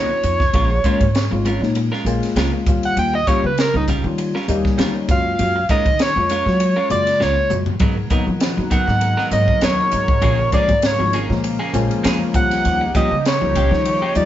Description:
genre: electric jazz fusion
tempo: 99 BPM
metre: 4/4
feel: swing 54% on 16ths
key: G# dorian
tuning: A4 = 439 Hz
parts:
  - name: overdriven synth lead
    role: melody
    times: 0.0-14.3 s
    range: D#4 to G5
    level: -19 LUFS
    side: equal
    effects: distortion
  - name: tine electric piano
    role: accompaniment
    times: 0.0-14.3 s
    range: C#3 to G4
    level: -23 LUFS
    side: left 4 dB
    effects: phaser
  - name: electric guitar at the edge of break-up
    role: stabs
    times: 0.0-14.2 s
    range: E#3 to A#4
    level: -27 LUFS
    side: right 2 dB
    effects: none
  - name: upright bass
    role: bass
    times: 0.0-14.3 s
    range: G#1 to F#3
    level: -22 LUFS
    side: equal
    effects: none
  - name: crisp fusion drum kit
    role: drums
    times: 0.2-14.3 s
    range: hi-hat, kick drum, ride cymbal, snare drum, toms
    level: -21 LUFS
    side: equal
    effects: none
  - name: sweeping resonant pad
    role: sustained chords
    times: 7.8-14.3 s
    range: B2 to F#5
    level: -31 LUFS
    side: right 2 dB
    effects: chorus
room: light reverb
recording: band playing live in one room, nothing above 7.6 kHz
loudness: -15 LUFS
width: side -12 dB against mid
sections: 0.0-14.3 A section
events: analog synth lead solo 0.0-14.3; drum fill 7.2-7.8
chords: 0.0 G#m9 (rootless); 0.5 A#m7; 2.7 D#9; 5.1 F#maj9; 7.8 G#m9; 10.2 A#m7; 12.3 D#9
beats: | 0.55 1.15 1.76 2.37 | 2.97 3.58 4.18 4.79 | 5.40 6.00 6.61 7.21 | 7.82 8.42 9.03 9.63 | 10.23 10.84 11.44 12.05 | 12.65 13.25 13.86

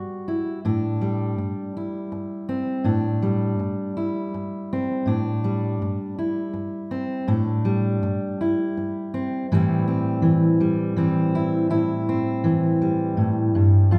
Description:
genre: folk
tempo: 81 BPM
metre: 3/4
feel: straight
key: unclear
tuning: A4 = 440 Hz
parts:
  - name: fingerpicked steel-string acoustic guitar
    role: solo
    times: 0.0-14.0 s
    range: F2 to F#4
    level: -23 LUFS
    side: equal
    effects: none
room: wet large studio reverb, RT60 1.2 s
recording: band playing live in one room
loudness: -23 LUFS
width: mono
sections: 0.0-9.5 A section; 9.5-14.0 B section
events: none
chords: 0.0 G5; 0.6 D7sus4/A; 9.5 Am7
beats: | 0.63 1.37 2.11 | 2.85 3.59 4.33 | 5.07 5.80 6.54 | 7.28 8.02 8.76 | 9.49 10.23 10.97 | 11.71 12.44 13.18 | 13.92

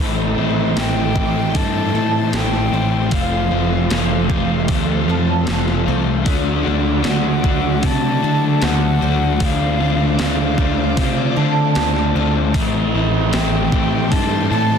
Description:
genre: rock, shoegaze and dream pop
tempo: 76 BPM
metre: 4/4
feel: straight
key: A minor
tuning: A4 = 440 Hz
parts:
  - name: string machine, cellos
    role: sustained chords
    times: 0.0-14.8 s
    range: F#4 to D6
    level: -27 LUFS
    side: right 1 dB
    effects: ensemble chorus
  - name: picked twelve-string acoustic guitar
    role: arpeggios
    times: 0.0-14.8 s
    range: E4 to C5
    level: -29 LUFS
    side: right 11 dB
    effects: ensemble chorus, digital delay
  - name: overdriven semi-hollow guitar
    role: riff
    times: 0.0-14.8 s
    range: A2 to F#4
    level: -20 LUFS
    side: left 12 dB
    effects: lush chorus
  - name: overdriven semi-hollow guitar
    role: riff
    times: 0.0-14.8 s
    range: F2 to F#4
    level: -23 LUFS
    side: right 15 dB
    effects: reverse reverb
  - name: growling picked electric bass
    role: bass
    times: 0.0-14.8 s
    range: F1 to D3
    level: -20 LUFS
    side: right 1 dB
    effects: overdrive
  - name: breathy mellow concert flute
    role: melody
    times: 0.8-14.8 s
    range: F5 to A5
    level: -25 LUFS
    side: left 1 dB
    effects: digital delay
  - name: clean 12-bit digital drum machine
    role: drums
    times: 0.8-14.3 s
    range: hi-hat, kick drum, snare drum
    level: -22 LUFS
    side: equal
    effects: none
room: little or no reverb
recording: dense, heavily limited modern master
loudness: -15 LUFS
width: side -7 dB against mid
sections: 0.0-14.8 A section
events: none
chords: 0.0 Am7; 3.1 F; 6.3 Dadd9; 9.4 Dm7; 12.5 Am7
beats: 0.77 1.55 2.33 | 3.12 3.90 4.69 5.47 | 6.26 7.04 7.83 8.62 | 9.40 10.19 10.97 11.76 | 12.55 13.33 14.12

